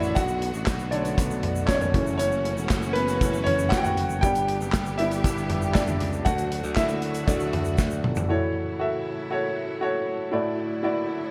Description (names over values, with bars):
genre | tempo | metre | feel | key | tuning
piano-driven pop | 118 BPM | 4/4 | straight | D major | A4 = 441 Hz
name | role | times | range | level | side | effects
clear concert grand piano | accompaniment | 0.0-11.3 s | A2 to G5 | -28 LUFS | equal | slapback echo
clear studio string section | sustained chords | 0.0-11.3 s | A2 to G4 | -37 LUFS | equal | none
modern bright picked electric bass | bass | 0.0-8.3 s | E1 to D2 | -32 LUFS | equal | none
tube shaker | percussion | 0.0-8.3 s | none | -45 LUFS | equal | none
modern studio drum kit | drums | 0.2-8.3 s | handclaps, hi-hat, kick drum, snare drum, toms | -29 LUFS | equal | none
room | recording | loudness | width
moderate lush hall reverb, RT60 1.6 s, studio ambience | big arena sound | -25 LUFS | mono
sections
0.0-8.3 A section; 8.3-11.3 B section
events
grand piano solo 0.0-8.3; drum fill 7.8-8.3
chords
0.2 Bm7; 1.9 F#m7; 4.2 G; 6.3 D; 8.3 A6; 10.3 Dadd9/A